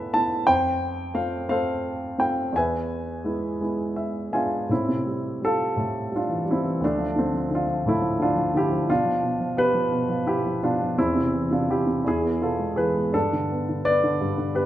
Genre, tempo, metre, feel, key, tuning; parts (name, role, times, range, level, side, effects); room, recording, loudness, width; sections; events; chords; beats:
classical, lyrical solo piano; 57 BPM (dotted quarters); 6/8; rubato; A minor; A4 = 441 Hz
warm grand piano; solo; 0.0-14.7 s; D2 to B5; -22 LUFS; equal
moderate recital hall reverb, RT60 1.6 s; minimal, uncompressed stereo recording; -22 LUFS; side -13 dB against mid
0.0-4.7 A section; 4.7-14.7 B section
grand piano fill 3.6-4.7
0.5 F; 2.5 E; 4.7 Am7; 6.8 Dmadd9; 8.9 Bdim; 11.0 Dm11/E; 12.0 E; 13.1 Gadd9
| 0.46 1.49 | 2.54 3.62 | 4.70 5.78 | 6.82 7.86 | 8.90 9.93 | 10.97 12.05 | 13.14 14.21